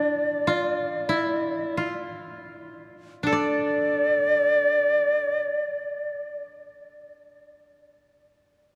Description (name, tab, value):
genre	japanese traditional, Japanese chamber music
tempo	41-51 BPM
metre	4/4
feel	rubato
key	D hirajoshi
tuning	A4 = 441 Hz
part	bright shakuhachi	melody	0.0-6.3 s	D5	-26 LUFS	equal	none
part	koto	second line	0.0-6.4 s	D4 to D5	-30 LUFS	equal	none
room	wet cathedral reverb, RT60 4.8 s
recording	dark, warm production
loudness	-24 LUFS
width	mono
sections	0.0-3.2 A section; 3.2-8.8 B section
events	slowing down 0.0-3.2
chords	none